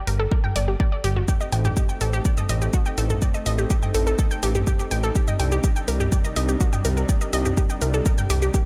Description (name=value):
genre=melodic techno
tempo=124 BPM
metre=4/4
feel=straight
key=unclear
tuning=A4 = 437 Hz
part: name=unison pluck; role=arpeggios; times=0.0-8.6 s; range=F#4 to G5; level=-30 LUFS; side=equal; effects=cassette tape, sidechain pumping, dub echo
part: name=fat analog bass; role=bass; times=0.1-8.5 s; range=G1 to C2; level=-25 LUFS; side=equal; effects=sidechain pumping
part: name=house drum kit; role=drums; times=0.1-8.6 s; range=hi-hat, shaker, toms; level=-31 LUFS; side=equal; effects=none
part: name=electronic kick drum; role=drums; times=0.3-8.6 s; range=none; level=-24 LUFS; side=equal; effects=none
part: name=lush unison pad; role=sustained chords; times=1.3-8.7 s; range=C3 to Eb4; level=-34 LUFS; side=equal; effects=chorus, sidechain pumping
room=little or no reverb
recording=echo-heavy mix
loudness=-22 LUFS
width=mono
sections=0.0-8.7 A section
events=none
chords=0.0 Gm; 1.3 Adim; 5.2 Cm